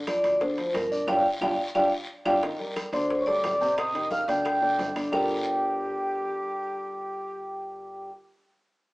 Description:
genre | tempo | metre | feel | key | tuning
Afro-Cuban jazz | 178 BPM | 4/4 | straight | G minor | A4 = 437 Hz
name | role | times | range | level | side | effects
upright bass | bass | 0.0-8.1 s | G1 to D2 | -44 LUFS | equal | none
vibraphone with medium mallets | melody | 0.1-8.1 s | Bb4 to G5 | -26 LUFS | equal | none
warm grand piano | accompaniment | 0.1-8.1 s | C3 to Eb5 | -31 LUFS | equal | none
bongos | percussion | 0.1-5.2 s | none | -39 LUFS | left 2 dB | none
claves | percussion | 0.1-5.2 s | none | -42 LUFS | right 1 dB | none
congas | percussion | 0.1-5.2 s | none | -44 LUFS | left 1 dB | none
guiro | percussion | 0.1-5.2 s | none | -43 LUFS | left 1 dB | none
timbales | percussion | 0.1-5.2 s | none | -37 LUFS | right 1 dB | none
breathy concert flute | second line | 2.9-8.1 s | G4 to G6 | -32 LUFS | equal | none
room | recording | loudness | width
moderate studio reverb, RT60 0.8 s | band playing live in one room, small speaker sound | -24 LUFS | side -22 dB against mid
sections
0.0-2.4 A section; 2.4-5.1 B section; 5.1-7.8 C section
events
drum fill 1.1-2.4; band accent 1.1-2.4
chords
0.0 G7(no3); 2.4 Cm9; 3.1 D7sus4; 3.8 Am7b5; 4.5 Dsus4; 5.1 Gm9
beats
0.07 0.41 0.75 | 1.08 1.42 1.76 2.09 | 2.43 2.77 3.10 3.44 | 3.78 4.12 4.45 4.79 | 5.13 5.47 5.80 6.14 | 6.48 6.82 7.16 7.49

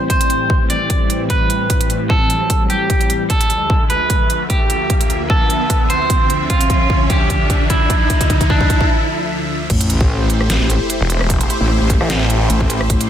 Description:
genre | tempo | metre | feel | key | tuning
heavy wobble dubstep | 150 BPM | 4/4 | swing 54% on 16ths, half-time | A minor | A4 = 441 Hz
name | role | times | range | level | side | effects
electric guitar at the edge of break-up | melody | 0.0-8.9 s | D4 to D5 | -18 LUFS | right 1 dB | tape echo
supersaw pad | sustained chords | 0.0-13.1 s | D2 to E5 | -22 LUFS | left 1 dB | phaser, sidechain pumping, low-pass filter
riser and sub drop | sound effects | 0.8-11.3 s | none | -24 LUFS | right 1 dB | none
dubstep drum kit | drums | 0.1-13.1 s | crash cymbal, hi-hat, rim click, snare drum | -22 LUFS | right 2 dB | high-pass filter on hats, high-pass filter on toms, high-pass filter on cymbals, high-pass filter on snare
electronic kick drum | drums | 0.1-13.0 s | none | -16 LUFS | equal | none
metallic wobble bass | bass | 9.7-13.1 s | A1 | -16 LUFS | equal | chorus, overdrive
snarling distorted saw bass | bass | 11.0-12.5 s | E1 to A1 | -17 LUFS | equal | distortion, overdrive
room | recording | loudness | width
light reverb | dense, heavily limited modern master | -13 LUFS | side -10 dB against mid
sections
0.0-9.7 A section; 9.7-13.1 B section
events
build-up 0.0-9.7; filter sweep on supersaw synth 0.0-9.7; riser 0.8-8.9; drum fill 3.3-8.9; break 8.9-9.7; drop 9.7-13.1; impact 9.7-11.3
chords
0.0 Am7; 3.3 Dmadd9; 9.7 Am7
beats
| 0.10 0.50 0.90 1.30 | 1.70 2.10 2.50 2.90 | 3.30 3.70 4.10 4.50 | 4.90 5.30 5.70 6.10 | 6.50 6.90 7.30 7.70 | 8.10 8.50 8.90 9.30 | 9.70 10.10 10.50 10.90 | 11.30 11.70 12.10 12.50 | 12.90

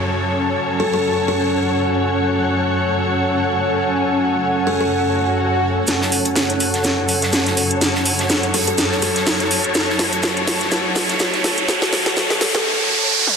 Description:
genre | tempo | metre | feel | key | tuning
bass house | 124 BPM | 4/4 | swing 56% on 16ths | F# minor | A4 = 440 Hz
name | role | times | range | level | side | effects
muted studio string section | sustained chords | 0.0-13.4 s | F#2 to C#5 | -22 LUFS | equal | low-pass filter
downlifter, swell and riser | sound effects | 0.0-13.4 s | none | -23 LUFS | right 2 dB | none
granular cloud pad | texture | 0.0-12.7 s | C#4 to A5 | -22 LUFS | equal | built-in reverb
buzzing kalimba | melody | 0.8-4.9, 8.5-12.6 s | A4 | -24 LUFS | left 2 dB | tape echo
house drum kit | drums | 5.9-13.4 s | hi-hat, snare drum, toms | -19 LUFS | equal | overdrive, low-pass filter on hats, low-pass filter on snare, low-pass filter on toms, low-pass filter on room
modern studio drum kit | drums | 5.9-12.3 s | hi-hat, shaker, snare drum | -26 LUFS | right 3 dB | high-pass filter on hats, high-pass filter on snare, high-pass filter on perc, high-pass filter on room
room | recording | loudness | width
wet lush hall reverb, RT60 2.2 s | dense, heavily limited modern master, high-pass filter | -16 LUFS | side -6 dB against mid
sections
0.0-5.9 A section; 5.9-13.4 B section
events
swell 5.1-5.9; build-up 5.9-13.4; drum fill 5.9-12.7; riser 5.9-13.4; filter sweep on string section 5.9-13.4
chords
0.0 F#m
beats
| 0.07 0.56 1.04 1.52 | 2.01 2.49 2.98 3.46 | 3.94 4.43 4.91 5.40 | 5.88 6.36 6.85 7.33 | 7.82 8.30 8.78 9.27 | 9.75 10.23 10.72 11.20 | 11.69 12.17 12.65 13.14

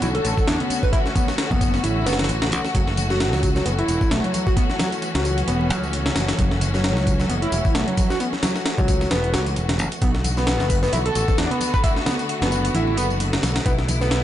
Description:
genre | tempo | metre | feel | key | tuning
breakbeat, breaks | 132 BPM | 4/4 | swing 56% on 16ths | B minor | A4 = 441 Hz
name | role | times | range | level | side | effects
clear symphonic string section | sustained chords | 0.0-14.2 s | D3 to F#4 | -27 LUFS | left 2 dB | vintage 12-bit sampler grit, sidechain pumping
overdriven synth lead | riff | 0.0-14.2 s | F#3 to B4 | -25 LUFS | equal | distortion, tube saturation, lush chorus, ping-pong delay
modern bright picked electric bass | bass | 0.0-14.2 s | E1 to E2 | -23 LUFS | equal | tube saturation
breakbeat sampler-style drum kit | drums | 0.0-14.2 s | hi-hat, kick drum, snare drum | -23 LUFS | equal | none
tambourine | drums | 0.0-14.2 s | none | -35 LUFS | left 4 dB | overdrive
congas | percussion | 0.0-14.1 s | none | -33 LUFS | right 2 dB | none
room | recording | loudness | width
light reverb, digital ambience | nothing above 10.5 kHz | -18 LUFS | side -12 dB against mid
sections
0.0-14.2 A section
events
filter sweep on analog synth lead 0.0-14.2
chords
0.0 Bm7; 2.8 F#m7; 10.0 Bm7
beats
0.02 0.48 | 0.93 1.39 1.84 2.29 | 2.75 3.20 3.66 4.11 | 4.57 5.02 5.48 5.93 | 6.39 6.84 7.29 7.75 | 8.20 8.66 9.11 9.57 | 10.02 10.48 10.93 11.39 | 11.84 12.29 12.75 13.20 | 13.66 14.11

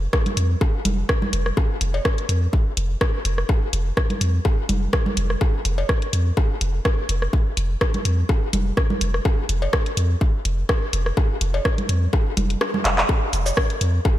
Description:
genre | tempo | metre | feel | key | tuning
minimal techno | 125 BPM | 4/4 | swing 54% on 16ths | unclear | A4 = 440 Hz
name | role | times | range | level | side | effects
punchy sub bass | bass | 0.0-14.0 s | F1 to F2 | -21 LUFS | equal | sidechain pumping
electronic kick drum | drums | 0.1-14.2 s | none | -20 LUFS | equal | none
house drum kit | drums | 0.1-13.9 s | handclaps, hi-hat, rim click, shaker | -25 LUFS | equal | none
bongos, congas and cowbell | percussion | 0.1-14.2 s | none | -28 LUFS | left 1 dB | diffuse ambient delay
room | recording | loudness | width
light reverb, digital ambience | none | -19 LUFS | side -13 dB against mid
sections
0.0-13.1 A section; 13.1-14.2 B section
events
kick drops out 12.6-13.1; drum fill 12.9; drop 13.1-14.2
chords
none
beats
0.13 0.61 1.09 | 1.57 2.05 2.53 3.01 | 3.49 3.97 4.45 4.93 | 5.41 5.89 6.37 6.85 | 7.33 7.81 8.29 8.77 | 9.25 9.73 10.21 10.69 | 11.17 11.65 12.13 12.61 | 13.09 13.57 14.05

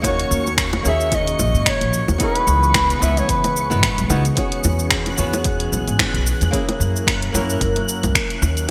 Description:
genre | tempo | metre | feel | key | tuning
sunset chillout | 111 BPM | 4/4 | swing 56% on 16ths | E lydian | A4 = 439 Hz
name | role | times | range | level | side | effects
flamenco guitar | accompaniment | 0.0-8.7 s | A#3 to B4 | -29 LUFS | equal | delay
airy breathy pad | sustained chords | 0.0-8.7 s | C#3 to A#4 | -30 LUFS | equal | chorus, phaser
upright bass | bass | 0.0-8.7 s | G#1 to G#2 | -24 LUFS | equal | none
deep house drum kit | drums | 0.0-8.7 s | finger snaps, hi-hat, shaker | -24 LUFS | equal | overdrive, studio ambience, gated reverb
electronic kick drum | drums | 0.0-8.3 s | none | -28 LUFS | equal | overdrive, studio ambience
bongos | percussion | 0.0-8.5 s | none | -31 LUFS | equal | none
twinkling granular texture | texture | 0.0-8.7 s | C#6 to F#6 | -34 LUFS | equal | built-in reverb, ensemble chorus
dark soprano saxophone | melody | 0.1-4.1 s | B4 to E5 | -23 LUFS | equal | digital delay
room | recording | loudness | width
moderate plate reverb, RT60 2.7 s | bright 1980s-style digital production | -19 LUFS | mono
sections
0.0-4.4 A section; 4.4-8.7 A section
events
none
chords
0.0 D#m7; 2.2 C#m7; 4.4 E6; 6.5 F#7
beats
| 0.04 0.58 1.12 1.66 | 2.20 2.74 3.29 3.83 | 4.37 4.91 5.45 5.99 | 6.53 7.07 7.61 8.15 | 8.69

